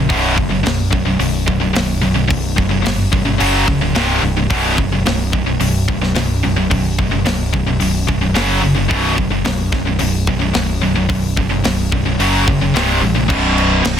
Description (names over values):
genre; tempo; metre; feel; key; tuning
heavy metal; 109 BPM; 4/4; straight; unclear; A4 = 444 Hz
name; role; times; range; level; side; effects
high-gain distorted guitar; riff; 0.0-14.0 s; B1 to F#3; -19 LUFS; right 9 dB; distortion
tight distorted guitar; riff; 0.0-14.0 s; B1 to F#3; -19 LUFS; left 10 dB; distortion
modern bright picked electric bass; bass; 0.0-14.0 s; B0 to A1; -19 LUFS; equal; none
tight metal drum kit; drums; 0.1-14.0 s; crash cymbal, hi-hat, kick drum, snare drum; -20 LUFS; equal; soft clipping on kick
fuzz guitar; riff; 13.3-14.0 s; B1 to B2; -20 LUFS; left 1 dB; distortion
room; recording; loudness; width
light reverb; dense, heavily limited modern master; -13 LUFS; side -9 dB against mid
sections
0.0-13.3 A section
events
none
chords
0.1 B5; 3.4 F#5; 4.0 C5; 4.5 B5; 8.4 F#5; 8.9 B5; 12.2 F#5; 12.7 C5; 13.3 B5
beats
| 0.10 0.65 1.20 1.75 | 2.30 2.85 3.40 3.95 | 4.50 5.05 5.61 6.16 | 6.71 7.25 7.80 8.36 | 8.90 9.45 10.00 10.55 | 11.10 11.65 12.20 12.75 | 13.30 13.85